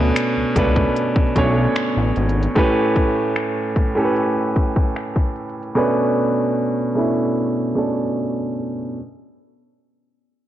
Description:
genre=contemporary R&B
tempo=75 BPM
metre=4/4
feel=straight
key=B minor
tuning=A4 = 440 Hz
part: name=clear baby grand piano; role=accompaniment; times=0.0-9.0 s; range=A2 to C#5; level=-18 LUFS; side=right 1 dB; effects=none
part: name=fat analog bass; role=bass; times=0.0-2.5 s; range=G#1 to D2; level=-19 LUFS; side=left 1 dB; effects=none
part: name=trap drum kit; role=drums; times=0.2-5.8 s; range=finger snaps, hi-hat, kick drum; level=-20 LUFS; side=left 1 dB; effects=soft clipping on snare
room=light reverb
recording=blown-out, overdriven recording, overdrive, low-pass filter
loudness=-17 LUFS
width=side -12 dB against mid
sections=0.0-9.0 A section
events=filter sweep 0.0-9.0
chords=0.0 Bm7; 2.6 A7; 5.8 Bm7

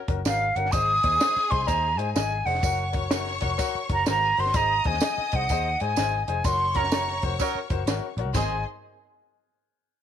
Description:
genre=uptempo 1960s-style soul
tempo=126 BPM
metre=4/4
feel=swing 64% on 8ths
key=Ab mixolydian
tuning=A4 = 443 Hz
part: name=warm upright piano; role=accompaniment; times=0.1-8.6 s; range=Db4 to Eb5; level=-32 LUFS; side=left 13 dB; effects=none
part: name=vintage muted picked electric bass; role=bass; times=0.1-8.6 s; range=F1 to Ab2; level=-30 LUFS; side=equal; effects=none
part: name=compact cocktail drum kit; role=drums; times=0.1-8.5 s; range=hi-hat, kick drum, snare drum, splash cymbal, toms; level=-29 LUFS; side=right 1 dB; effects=none
part: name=silver concert flute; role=melody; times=0.3-8.6 s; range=F5 to Eb6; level=-24 LUFS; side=right 1 dB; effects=none
part: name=tambourine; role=percussion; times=0.3-8.6 s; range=none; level=-36 LUFS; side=right 19 dB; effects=none
part: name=clear studio string section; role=second line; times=0.7-8.6 s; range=Ab4 to Eb6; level=-34 LUFS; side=left 2 dB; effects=none
part: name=warm horn section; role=second line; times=6.7-8.6 s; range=Eb3 to Bb4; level=-33 LUFS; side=right 13 dB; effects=none
room=little or no reverb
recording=1960s-style stereo with parts hard left and right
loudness=-22 LUFS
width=side -9 dB against mid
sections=0.0-8.3 A section; 8.3-10.0 B section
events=band accent 6.4-8.3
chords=0.0 Gb; 0.7 Ab; 2.6 Gb; 4.5 Ab; 6.4 Gb; 8.3 Ab

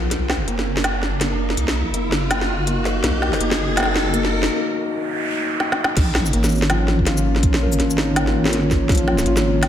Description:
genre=half-time drum and bass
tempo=164 BPM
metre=4/4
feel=swing 59% on 16ths, half-time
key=Bb phrygian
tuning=A4 = 440 Hz
part: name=dark analog pad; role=sustained chords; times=0.0-9.7 s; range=Bb3 to D#5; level=-24 LUFS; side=left 1 dB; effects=chorus, sidechain pumping
part: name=felt-muted upright piano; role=arpeggios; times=0.0-9.7 s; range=F3 to Bb4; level=-26 LUFS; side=equal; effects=ping-pong delay
part: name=deep soft wobble bass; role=bass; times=0.0-9.7 s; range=F#1 to B1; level=-22 LUFS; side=equal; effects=chorus
part: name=riser and noise sweep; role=sound effects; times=0.0-6.0 s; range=none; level=-27 LUFS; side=right 1 dB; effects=none
part: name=organic electronic drum kit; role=drums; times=0.1-9.7 s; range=crash cymbal, hi-hat, shaker, snare drum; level=-22 LUFS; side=equal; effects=none
part: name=electronic kick drum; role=drums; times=6.0-9.0 s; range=none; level=-18 LUFS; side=equal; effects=none
room=moderate lush hall reverb, RT60 1.9 s, digital ambience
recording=dreamy mix soaked in reverb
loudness=-17 LUFS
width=side -10 dB against mid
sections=0.0-6.0 A section; 6.0-9.7 B section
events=build-up 0.0-6.0; riser 0.0-4.5; filter sweep on analog synth pad 0.0-6.0; filter sweep on felt piano 0.0-6.0; break 4.5-6.0; noise sweep 4.5-6.0; drum fill 5.6-6.0; drop 6.0-9.7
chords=0.1 B; 6.0 Bbm

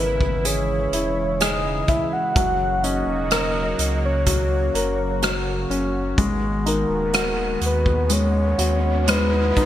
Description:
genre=pop ballad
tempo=63 BPM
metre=4/4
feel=straight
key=unclear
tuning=A4 = 439 Hz
part: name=soft octave-layered synth lead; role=melody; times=0.0-9.7 s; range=A#4 to F#5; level=-24 LUFS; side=equal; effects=chorus
part: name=clear baby grand piano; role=accompaniment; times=0.0-9.7 s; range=E3 to A#4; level=-25 LUFS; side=left 3 dB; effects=none
part: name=sweeping resonant pad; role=sustained chords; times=0.0-9.7 s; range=C#3 to F#4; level=-28 LUFS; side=right 1 dB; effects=chorus
part: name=warm sub bass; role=bass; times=0.0-9.5 s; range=D#1 to D#2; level=-25 LUFS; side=equal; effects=none
part: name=unplugged drum kit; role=drums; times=0.2-9.7 s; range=hi-hat, kick drum, rim click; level=-23 LUFS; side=right 1 dB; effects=gated reverb
part: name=riser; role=sound effects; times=8.1-9.7 s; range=none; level=-33 LUFS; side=right 2 dB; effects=none
room=moderate lush hall reverb, RT60 2.9 s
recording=bright 1980s-style digital production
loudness=-19 LUFS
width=side -12 dB against mid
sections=0.0-9.7 A section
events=riser 8.1-9.7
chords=0.0 C#m; 2.4 F#; 6.2 G#m7

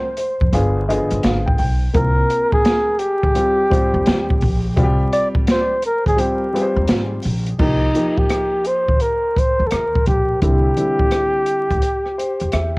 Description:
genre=hip hop, jazz-hop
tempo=85 BPM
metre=4/4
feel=swing 65% on 16ths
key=C minor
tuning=A4 = 442 Hz
part: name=breathy flugelhorn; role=melody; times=0.0-12.8 s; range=Eb4 to D5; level=-19 LUFS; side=equal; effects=tape echo
part: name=dark concert grand piano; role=accompaniment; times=0.0-12.7 s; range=D3 to G5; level=-22 LUFS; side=left 1 dB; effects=cassette tape
part: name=open jazz drum kit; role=drums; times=0.2-12.7 s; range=crash cymbal, hi-hat, kick drum, rim click, snare drum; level=-20 LUFS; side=equal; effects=cassette tape
part: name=upright bass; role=bass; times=0.4-12.8 s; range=G1 to F2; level=-20 LUFS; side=equal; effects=tube saturation
room=light reverb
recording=home recording on cassette, vinyl crackle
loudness=-15 LUFS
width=side -26 dB against mid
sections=0.0-7.6 A section; 7.6-12.8 B section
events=grand piano fill 0.0-1.9, 11.8-12.8; flugelhorn solo 0.0-7.6; break 6.2-7.6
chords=0.0 Bbsus2 (rootless); 0.5 G7b9; 1.9 C7(no3); 7.6 Cm7; 10.4 C

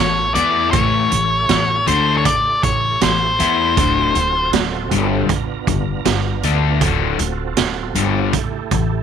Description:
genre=blues rock power trio and southern rock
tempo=79 BPM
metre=4/4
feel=straight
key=unclear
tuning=A4 = 440 Hz
part: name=octave-fuzz lead guitar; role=melody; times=0.0-4.5 s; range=B#4 to D5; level=-17 LUFS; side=left 1 dB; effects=distortion
part: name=overdriven tonewheel organ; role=sustained chords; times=0.0-9.0 s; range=A3 to A#5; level=-28 LUFS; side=right 10 dB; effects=chorus vibrato, fast rotary speaker
part: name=crunchy overdriven guitar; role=riff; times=0.0-9.0 s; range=D2 to E4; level=-21 LUFS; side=left 12 dB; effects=none
part: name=upright bass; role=bass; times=0.0-9.0 s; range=D1 to E2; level=-22 LUFS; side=right 1 dB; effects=none
part: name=raw garage drum kit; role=drums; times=0.4-8.9 s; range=hi-hat, kick drum, snare drum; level=-20 LUFS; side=right 7 dB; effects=none
room=light reverb, studio reverb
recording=1960s-style stereo with parts hard left and right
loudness=-15 LUFS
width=side -8 dB against mid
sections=0.0-9.0 A section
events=none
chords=0.0 A7#9; 3.8 D7#9; 5.3 G7#9; 6.8 D7#9; 8.3 A7(no3)

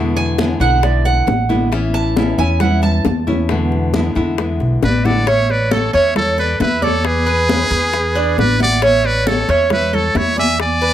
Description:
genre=latin, Cuban son and guajira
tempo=135 BPM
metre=4/4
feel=straight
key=A major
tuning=A4 = 441 Hz
part: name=nylon-string guitar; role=accompaniment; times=0.0-5.3 s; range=B2 to E4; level=-20 LUFS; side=left 3 dB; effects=none
part: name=upright bass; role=bass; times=0.0-10.9 s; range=A1 to E2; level=-19 LUFS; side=equal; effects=none
part: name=Cuban tres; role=arpeggios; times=0.2-10.9 s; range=C#4 to A5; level=-19 LUFS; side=right 3 dB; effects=slapback echo
part: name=bongos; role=percussion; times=0.2-10.9 s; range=none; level=-23 LUFS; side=left 8 dB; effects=none
part: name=congas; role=percussion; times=0.2-10.9 s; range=none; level=-21 LUFS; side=equal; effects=none
part: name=trumpet with metal mute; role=melody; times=4.8-10.9 s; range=G#4 to E5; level=-18 LUFS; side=equal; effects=none
part: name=bright reedy silver concert flute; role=second line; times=4.8-10.9 s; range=B4 to G#5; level=-24 LUFS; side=left 2 dB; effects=none
room=light reverb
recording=close, detailed microphones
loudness=-13 LUFS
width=side -11 dB against mid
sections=0.0-5.3 A section; 5.3-10.9 B section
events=Cuban tres solo 0.0-5.3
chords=0.0 E7; 1.7 Aadd9; 3.5 E7; 5.3 A; 7.0 E7; 8.8 A

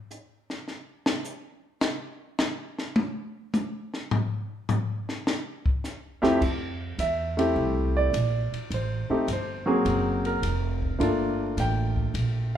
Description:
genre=jazz piano trio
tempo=105 BPM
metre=4/4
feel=swing 68% on 8ths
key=F major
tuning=A4 = 439 Hz
part: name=compact cocktail drum kit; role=drums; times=0.1-12.3 s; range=crash cymbal, hi-hat, kick drum, ride cymbal, snare drum, toms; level=-29 LUFS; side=left 1 dB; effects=none
part: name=warm grand piano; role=melody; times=6.2-12.6 s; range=F2 to G5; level=-25 LUFS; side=equal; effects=none
part: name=upright bass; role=bass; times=6.2-12.6 s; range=F1 to F2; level=-28 LUFS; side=right 1 dB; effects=none
room=moderate large studio reverb, RT60 1.2 s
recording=band playing live in one room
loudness=-25 LUFS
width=side -10 dB against mid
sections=0.0-6.4 A section; 6.4-12.6 B section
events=grand piano solo 0.0-6.4; drum solo 0.0-6.4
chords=0.0 N.C.; 6.4 Fmaj9; 8.7 Am7; 9.9 Ab13; 11.0 Gm9

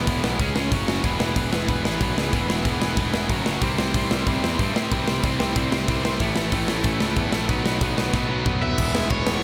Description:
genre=punk rock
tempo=186 BPM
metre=4/4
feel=straight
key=unclear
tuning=A4 = 440 Hz
part: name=distorted electric guitar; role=riff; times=0.0-9.4 s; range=E2 to C#4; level=-30 LUFS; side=equal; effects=overdrive
part: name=tight distorted guitar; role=riff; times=0.0-9.4 s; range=A2 to C#5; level=-30 LUFS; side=equal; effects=distortion
part: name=fuzz picked electric bass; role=bass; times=0.0-9.4 s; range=E1 to A2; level=-29 LUFS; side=equal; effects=overdrive
part: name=big rock drum kit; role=drums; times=0.1-9.3 s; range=crash cymbal, hi-hat, kick drum, ride cymbal, snare drum, toms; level=-27 LUFS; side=equal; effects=none
part: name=raw garage guitar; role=melody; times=8.6-9.4 s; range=C#5 to E5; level=-30 LUFS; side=equal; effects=overdrive
room=little or no reverb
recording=none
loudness=-23 LUFS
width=mono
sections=0.0-8.8 A section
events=drum fill 8.1-8.8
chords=0.4 C#5; 0.7 F#5; 1.0 E; 3.3 F#5; 3.6 C; 6.2 A; 7.5 B; 8.8 E

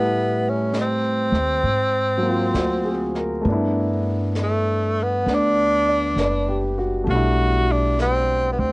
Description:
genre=jazz ballad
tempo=66 BPM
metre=4/4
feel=swing 66% on 8ths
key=G major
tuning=A4 = 437 Hz
part: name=bright tenor saxophone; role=melody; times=0.0-8.7 s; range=A3 to F#4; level=-21 LUFS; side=equal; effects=cassette tape, plate reverb
part: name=clear grand piano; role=accompaniment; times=0.0-8.7 s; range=Gb3 to D5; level=-24 LUFS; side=equal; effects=cassette tape, plate reverb
part: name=upright bass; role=bass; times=0.0-8.7 s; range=F#1 to A2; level=-24 LUFS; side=equal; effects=none
part: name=jazz brush drum kit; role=drums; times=0.7-8.7 s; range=brushed snare drum, hi-hat, snare drum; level=-34 LUFS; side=equal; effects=cassette tape
room=light reverb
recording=home recording on cassette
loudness=-18 LUFS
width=side -25 dB against mid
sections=0.0-8.7 A section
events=none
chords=0.0 Am7; 1.6 Ab13; 3.5 G6

